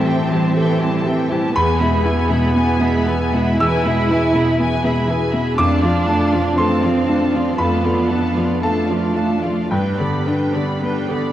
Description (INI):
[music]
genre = cinematic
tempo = 54-62 BPM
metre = 4/4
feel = rubato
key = unclear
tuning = A4 = 440 Hz
[part]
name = muted studio violin section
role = melody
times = 0.0-11.3 s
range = F5 to B5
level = -29 LUFS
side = equal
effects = none
[part]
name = muted studio violin section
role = second line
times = 0.0-11.3 s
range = F4 to G#5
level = -26 LUFS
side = left 2 dB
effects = none
[part]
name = bright baby grand piano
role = accompaniment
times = 0.0-11.3 s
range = E2 to E6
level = -20 LUFS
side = equal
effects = none
[part]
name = muted studio viola section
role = accompaniment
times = 0.0-11.3 s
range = E3 to B4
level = -24 LUFS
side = right 2 dB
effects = none
[part]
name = concert harp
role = arpeggios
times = 0.0-11.3 s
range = E2 to B4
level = -22 LUFS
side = left 2 dB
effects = none
[part]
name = muted studio cello section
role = bass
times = 0.0-11.3 s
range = G3 to E4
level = -22 LUFS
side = right 3 dB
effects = none
[sound]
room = wet concert hall reverb, RT60 2.5 s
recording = vinyl crackle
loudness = -15 LUFS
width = side -12 dB against mid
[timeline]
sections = 0.0-11.3 A section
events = none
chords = 0.0 Am7; 1.6 E; 5.6 Dm/F; 9.7 G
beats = 0.56 | 1.56 2.56 3.61 4.60 | 5.58 6.58 7.59 8.63 | 9.72 10.83